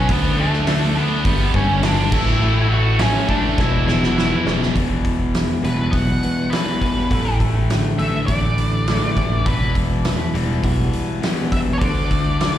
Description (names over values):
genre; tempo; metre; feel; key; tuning
quiet-loud alternative rock; 102 BPM; 4/4; straight; E minor; A4 = 440 Hz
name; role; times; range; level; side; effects
octave-fuzz lead guitar; melody; 0.0-12.6 s; A3 to F#5; -24 LUFS; right 1 dB; distortion, slapback echo, digital delay
crunchy overdriven guitar; riff; 0.0-12.6 s; E2 to D4; -23 LUFS; left 7 dB; slapback echo
scooped high-gain guitar; riff; 0.0-4.7 s; E2 to D4; -25 LUFS; right 12 dB; distortion
picked electric bass; bass; 0.0-12.5 s; E1 to D2; -20 LUFS; equal; none
loose indie drum kit; drums; 0.1-12.5 s; crash cymbal, hi-hat, kick drum, snare drum; -22 LUFS; equal; none
twelve-string electric guitar; arpeggios; 4.8-12.6 s; E2 to F#4; -25 LUFS; right 3 dB; tremolo
room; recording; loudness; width
little or no reverb; live gig heard through the venue's PA, recital hall reverb; -16 LUFS; side -11 dB against mid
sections
0.0-4.8 A section; 4.8-12.6 B section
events
drum fill 3.6-4.8; lead electric guitar solo 4.8-12.6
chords
0.1 D5; 1.3 G; 2.1 A; 3.6 E5; 4.8 Emadd9; 7.1 Asus4; 9.5 Emadd9; 11.8 D